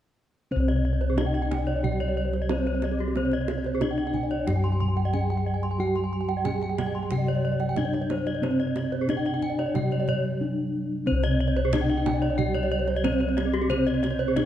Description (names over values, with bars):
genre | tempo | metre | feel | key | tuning
Balinese gamelan | 91 BPM | 4/4 | straight | C pelog | A4 = 440 Hz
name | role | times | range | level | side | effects
gamelan-type bronze metallophone | melody | 0.5-14.5 s | C4 to Ab4-40c | -29 LUFS | equal | none
gamelan-type bronze metallophone | accompaniment | 0.5-14.5 s | C3 to G3-45c | -33 LUFS | right 2 dB | none
gamelan-type bronze metallophone | arpeggios | 0.5-14.4 s | G4-45c to C6 | -32 LUFS | left 4 dB | none
gamelan-type bossed gongs | bass | 0.5-14.5 s | C2 to G4-45c | -28 LUFS | left 1 dB | none
gamelan-type bronze metallophone | arpeggios | 0.6-14.3 s | Ab4-40c to Ab5-40c | -32 LUFS | right 5 dB | none
kendang | percussion | 0.7-14.5 s | none | -34 LUFS | right 5 dB | none
room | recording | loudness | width
moderate scoring stage reverb, RT60 1.8 s | dark, warm production | -23 LUFS | side -11 dB against mid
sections
0.5-14.5 A section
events
none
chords
none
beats
| 0.51 1.17 1.83 2.49 | 3.15 3.81 4.47 5.13 | 5.79 6.45 7.11 7.76 | 8.42 9.08 9.74 10.40 | 11.06 11.72 12.38 13.04 | 13.70 14.36